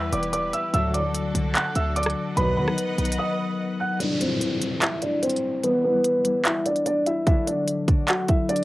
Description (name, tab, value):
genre	hip hop, trap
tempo	147 BPM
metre	4/4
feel	half-time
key	E minor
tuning	A4 = 440 Hz
part	dark concert grand piano	melody	0.0-8.6 s	B3 to F#6	-24 LUFS	equal	low-pass filter
part	concert harp	accompaniment	0.0-8.6 s	D3 to E4	-29 LUFS	left 4 dB	low-pass filter
part	rich symphonic string section	sustained chords	0.0-4.0 s	D3 to F#5	-33 LUFS	equal	none
part	short 808-style bass	bass	0.0-3.2 s	E1 to D#3	-27 LUFS	equal	none
part	trap drum kit	drums	0.1-8.6 s	handclaps, hi-hat, kick drum, rim click	-24 LUFS	equal	cassette tape
part	mellow synth brass	stabs	0.7-2.7 s	D2 to F#3	-28 LUFS	right 1 dB	chorus
part	downlifter	sound effects	4.0-7.3 s	none	-33 LUFS	equal	none
room	moderate studio reverb, RT60 0.6 s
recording	home recording on cassette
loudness	-21 LUFS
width	side -17 dB against mid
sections	0.0-4.0 A section; 4.0-8.6 B section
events	break 3.2-4.0; filter sweep 4.0-8.6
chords	0.0 Em; 0.7 D; 2.4 B; 4.0 Am7; 5.6 Em; 7.3 D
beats	0.33 | 0.74 1.15 1.55 1.96 | 2.37 2.78 3.19 3.59 | 4.00 4.41 4.82 5.23 | 5.63 6.04 6.45 6.86 | 7.27 7.68 8.08 8.49